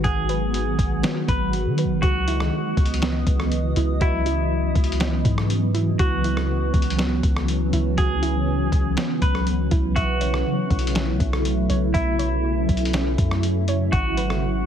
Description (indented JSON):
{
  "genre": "hip hop, atmospheric cloud-rap",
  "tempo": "121 BPM",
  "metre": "4/4",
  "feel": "half-time",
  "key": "C# minor",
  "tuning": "A4 = 440 Hz",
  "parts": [
    { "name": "clean electric guitar", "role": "melody", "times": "0.0-14.7 s", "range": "E4 to B4", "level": "-29 LUFS", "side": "left 1 dB", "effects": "ping-pong delay" },
    { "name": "shimmering ambient pad", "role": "sustained chords", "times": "0.0-14.7 s", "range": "C#3 to D#5", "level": "-25 LUFS", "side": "equal", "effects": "chorus, built-in reverb, phaser, sidechain pumping" },
    { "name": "soft round pluck", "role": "arpeggios", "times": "0.0-14.7 s", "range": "B3 to F#5", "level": "-32 LUFS", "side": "right 4 dB", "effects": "chorus, ping-pong delay" },
    { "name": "soft 808-style bass", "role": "bass", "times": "0.0-14.6 s", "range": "G#1 to D#3", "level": "-23 LUFS", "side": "equal", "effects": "none" },
    { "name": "lo-fi sampler-style drum kit", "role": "drums", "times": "0.0-14.4 s", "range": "hi-hat, kick drum, rim click, snare drum", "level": "-24 LUFS", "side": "equal", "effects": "none" }
  ],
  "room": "light reverb, digital ambience",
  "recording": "heavily compressed radio sound",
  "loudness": "-19 LUFS",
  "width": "side -9 dB against mid",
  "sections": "0.0-2.0 A section; 2.0-14.7 B section",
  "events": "none",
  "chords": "0.0 G#m7; 2.0 C#m11; 10.0 B9sus4; 13.9 G#m7"
}